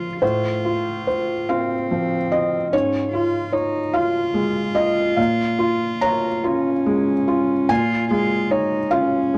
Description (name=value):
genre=neoclassical piano and strings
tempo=48 BPM (dotted quarters)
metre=6/8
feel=rubato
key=Bb minor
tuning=A4 = 436 Hz
part: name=warm cello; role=second line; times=0.0-9.4 s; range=C4 to F4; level=-26 LUFS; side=equal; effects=none
part: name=felt-muted upright piano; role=accompaniment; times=0.0-9.4 s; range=Ab2 to Bb5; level=-22 LUFS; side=equal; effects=none
room=light reverb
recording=dry, close 1970s-style studio recording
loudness=-21 LUFS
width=mono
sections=0.0-9.4 A section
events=none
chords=0.2 F/A; 2.7 Db/Ab; 5.2 Bbm7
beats=| 0.22 1.49 | 2.72 3.94 | 5.17 6.45 | 7.70 8.93